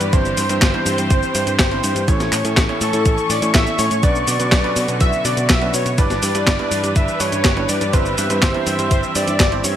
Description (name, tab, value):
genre	italo disco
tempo	123 BPM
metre	4/4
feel	straight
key	unclear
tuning	A4 = 440 Hz
part	wide unison lead	melody	0.0-9.8 s	A4 to E5	-22 LUFS	equal	ping-pong delay
part	rich studio string section	sustained chords	0.0-9.8 s	D3 to C#6	-24 LUFS	left 2 dB	none
part	clear electric grand piano	stabs	0.0-9.8 s	G2 to C#5	-25 LUFS	right 3 dB	none
part	picked electric bass	bass	0.0-9.7 s	G1 to B2	-23 LUFS	equal	none
part	clean 12-bit digital drum machine	drums	0.0-9.7 s	cabasa, handclaps, hi-hat, snare drum	-21 LUFS	equal	overdrive
part	electronic kick drum	drums	0.1-9.5 s	none	-17 LUFS	equal	overdrive
room	light reverb, digital ambience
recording	bright 1980s-style digital production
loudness	-15 LUFS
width	side -10 dB against mid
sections	0.0-9.8 A section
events	none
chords	0.1 C/G; 2.1 A; 4.0 Bmadd9; 6.0 G6; 7.9 C/G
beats	| 0.13 0.62 1.11 1.59 | 2.08 2.57 3.06 3.54 | 4.03 4.52 5.01 5.50 | 5.98 6.47 6.96 7.45 | 7.93 8.42 8.91 9.40